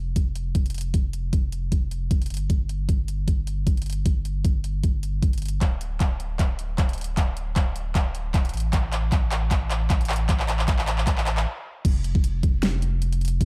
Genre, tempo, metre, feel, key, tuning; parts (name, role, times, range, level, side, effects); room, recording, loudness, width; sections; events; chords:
future bass; 154 BPM; 4/4; swing 55% on 16ths, half-time; A4 = 440 Hz
saturated sub bass; bass; 0.0-13.4 s; D1 to A1; -29 LUFS; equal; sidechain pumping
dubstep drum kit; drums; 0.2-13.4 s; crash cymbal, handclaps, hi-hat, snare drum; -32 LUFS; equal; overdrive, high-pass filter on snare, small room reverb, high-pass filter on hats, high-pass filter on cymbals
electronic kick drum; drums; 0.2-13.4 s; -24 LUFS; equal; overdrive, small room reverb
little or no reverb; dark, warm production; -24 LUFS; mono
0.0-11.8 A section; 11.8-13.4 B section
build-up 0.0-11.8; drum fill 5.6-11.5; stop 11.5-11.8; drop 11.8-13.4